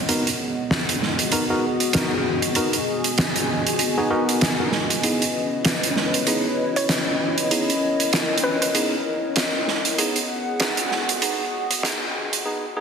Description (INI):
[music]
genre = glitch hop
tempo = 97 BPM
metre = 4/4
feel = swing 58% on 16ths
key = G# minor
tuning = A4 = 440 Hz
[part]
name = dark analog pad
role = sustained chords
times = 0.0-12.4 s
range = B3 to G#5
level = -27 LUFS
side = left 1 dB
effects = chorus, vintage 12-bit sampler grit
[part]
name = warbly tape-like pad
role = texture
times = 0.0-12.5 s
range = B3 to D#5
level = -28 LUFS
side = left 2 dB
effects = chorus, built-in reverb
[part]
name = barky tine electric piano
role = stabs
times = 0.1-12.8 s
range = B3 to A#4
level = -26 LUFS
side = equal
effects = dub echo
[part]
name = oversized low-tuned drum kit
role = drums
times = 0.1-12.4 s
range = hi-hat, snare drum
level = -22 LUFS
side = right 2 dB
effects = none
[part]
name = woody wave-folded pluck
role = melody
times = 6.8-8.7 s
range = B4 to C#5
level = -29 LUFS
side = equal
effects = chorus, dub echo
[sound]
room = moderate plate reverb, RT60 2.0 s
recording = dense, heavily limited modern master, high-pass filter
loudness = -19 LUFS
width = side -6 dB against mid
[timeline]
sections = 0.0-12.8 A section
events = build-up 0.0-12.8; break 12.5-12.8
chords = 0.1 G#m7; 5.0 C#m9; 10.0 G#m7